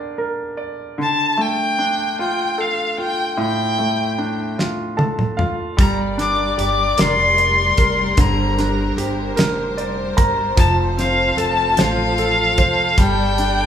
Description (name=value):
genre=six-eight pop ballad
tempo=50 BPM (dotted quarters)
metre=6/8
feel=straight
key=G minor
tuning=A4 = 442 Hz
part: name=clear concert grand piano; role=accompaniment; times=0.0-13.7 s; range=A2 to Bb5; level=-23 LUFS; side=right 1 dB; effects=none
part: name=warm violin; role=melody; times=1.0-13.7 s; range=F5 to D6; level=-18 LUFS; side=left 2 dB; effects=none
part: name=damped 70s drum kit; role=drums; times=4.6-13.6 s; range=hi-hat, kick drum, snare drum, toms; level=-18 LUFS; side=equal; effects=none
part: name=warm studio string section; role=sustained chords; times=5.8-13.7 s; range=F3 to D5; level=-24 LUFS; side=left 2 dB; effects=none
part: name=upright bass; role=bass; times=5.8-13.7 s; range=F1 to A1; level=-24 LUFS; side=equal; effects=none
room=wet large studio reverb, RT60 0.9 s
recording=band playing live in one room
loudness=-16 LUFS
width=side -9 dB against mid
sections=0.0-13.7 A section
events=drum fill 4.6-5.8; grand piano fill 4.6-5.8, 9.4-10.6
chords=0.0 Gm; 1.0 Dm; 5.8 Gm; 10.6 F; 13.0 Gsus2